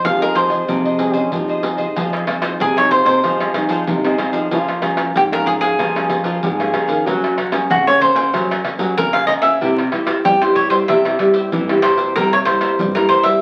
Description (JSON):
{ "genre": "samba and choro", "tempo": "94 BPM", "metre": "4/4", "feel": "straight", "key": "F minor", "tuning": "A4 = 439 Hz", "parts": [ { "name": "cavaquinho", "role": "melody", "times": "0.0-13.4 s", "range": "Gb4 to F5", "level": "-18 LUFS", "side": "equal", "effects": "none" }, { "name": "cavaquinho", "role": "accompaniment", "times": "0.0-13.4 s", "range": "E4 to Ab5", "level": "-28 LUFS", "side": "equal", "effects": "none" }, { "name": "nylon-string guitar", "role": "accompaniment", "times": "0.0-13.4 s", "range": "G2 to Ab4", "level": "-23 LUFS", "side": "equal", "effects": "none" }, { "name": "nylon-string guitar", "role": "bass", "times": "0.0-13.4 s", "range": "Ab2 to G3", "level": "-26 LUFS", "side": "equal", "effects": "none" }, { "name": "egg shaker, surdo, pandeiro and tamborim", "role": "percussion", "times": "0.0-13.4 s", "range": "none", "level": "-26 LUFS", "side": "equal", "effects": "none" }, { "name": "warm trombone", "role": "second line", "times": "1.0-7.5 s", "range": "Db4 to Ab4", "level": "-25 LUFS", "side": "equal", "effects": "none" } ], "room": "wet studio reverb, RT60 0.6 s", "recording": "very old 78 rpm record, vinyl crackle", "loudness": "-17 LUFS", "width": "mono", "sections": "0.0-2.0 A section; 2.0-13.4 B section", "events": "none", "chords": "0.0 Fm7; 4.5 Db6; 7.1 Gbadd9; 9.6 C; 12.2 C7" }